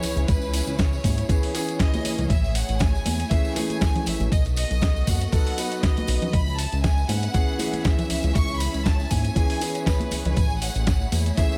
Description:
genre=nu-disco, nu disco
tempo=119 BPM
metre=4/4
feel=swing 54% on 16ths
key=C# minor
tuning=A4 = 440 Hz
part: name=clear studio violin section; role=melody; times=0.0-11.6 s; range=B4 to C#6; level=-34 LUFS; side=equal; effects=digital delay
part: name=warm baby grand piano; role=accompaniment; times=0.0-11.6 s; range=E3 to B4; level=-33 LUFS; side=equal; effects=sidechain pumping
part: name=warm symphonic string section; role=sustained chords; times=0.0-11.6 s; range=A3 to E5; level=-38 LUFS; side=equal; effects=sidechain pumping
part: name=chorused synth bass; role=bass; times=0.0-11.3 s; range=A1 to G#2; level=-28 LUFS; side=equal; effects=tube saturation
part: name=dusty soul sampler-style drum kit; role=drums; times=0.0-11.5 s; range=hi-hat, snare drum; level=-32 LUFS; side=equal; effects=none
part: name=tambourine and congas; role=percussion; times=0.0-11.6 s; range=none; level=-35 LUFS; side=equal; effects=none
part: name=electronic kick drum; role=drums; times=0.3-11.5 s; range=none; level=-25 LUFS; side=equal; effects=none
room=small room reverb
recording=none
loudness=-23 LUFS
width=mono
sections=0.0-11.6 A section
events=none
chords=0.0 C#m7; 2.3 Amaj7; 4.3 B7; 6.3 C#m7; 10.4 Amaj7

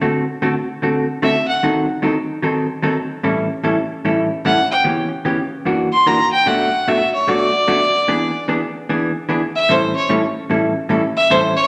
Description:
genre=country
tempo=149 BPM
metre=4/4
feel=swing 65% on 8ths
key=A mixolydian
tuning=A4 = 440 Hz
part: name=vintage hollow-body jazz guitar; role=accompaniment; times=0.0-11.5 s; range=F#2 to A4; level=-20 LUFS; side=equal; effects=none
part: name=clear fiddle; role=melody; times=1.2-1.6, 4.4-11.6 s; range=C5 to C6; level=-18 LUFS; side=equal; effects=none
room=wet large studio reverb, RT60 1.4 s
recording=none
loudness=-18 LUFS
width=mono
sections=0.0-11.7 A section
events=fiddle solo 0.0-11.7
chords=0.0 D7; 1.6 D#dim7; 3.2 A7; 4.9 C#m7b5; 5.7 F#aug7; 6.5 Bm7; 8.1 E7; 9.7 A7

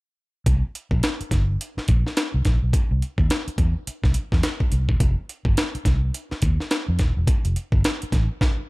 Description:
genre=funk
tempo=106 BPM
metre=4/4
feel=swing 60% on 16ths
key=C mixolydian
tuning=A4 = 438 Hz
part: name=vintage muted fingered electric bass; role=bass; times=0.5-8.3 s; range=Eb1 to F2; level=-22 LUFS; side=equal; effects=none
part: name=breakbeat sampler-style drum kit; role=drums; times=0.5-8.6 s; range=hi-hat, kick drum, snare drum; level=-21 LUFS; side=equal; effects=none
room=little or no reverb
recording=none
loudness=-20 LUFS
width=side -23 dB against mid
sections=0.5-8.7 A section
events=none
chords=none

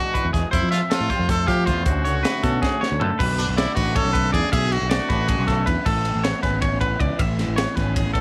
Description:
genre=math rock and midwest emo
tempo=315 BPM (eighths)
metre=7/8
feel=straight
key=unclear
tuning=A4 = 444 Hz
part: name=brilliant trumpet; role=melody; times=0.0-5.6 s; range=D4 to A4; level=-28 LUFS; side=equal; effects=slapback echo
part: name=electric guitar through a small old amp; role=accompaniment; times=0.0-8.2 s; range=D2 to E4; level=-31 LUFS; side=equal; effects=ensemble chorus
part: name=twangy electric guitar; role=arpeggios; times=0.0-8.2 s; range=F#4 to F5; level=-28 LUFS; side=equal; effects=none
part: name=crisp fusion drum kit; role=drums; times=0.1-8.2 s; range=crash cymbal, hi-hat, kick drum, ride cymbal, snare drum, toms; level=-27 LUFS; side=equal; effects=none
part: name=growling fingered electric bass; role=bass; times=0.2-8.2 s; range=G#1 to F3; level=-26 LUFS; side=equal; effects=overdrive
room=light reverb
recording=none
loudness=-21 LUFS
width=mono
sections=0.0-3.2 A section; 3.2-8.2 B section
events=drum fill 2.6-3.2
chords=0.0 E9; 0.5 Fmaj7; 1.9 Dmaj7; 3.2 Bm7; 5.9 Amaj9

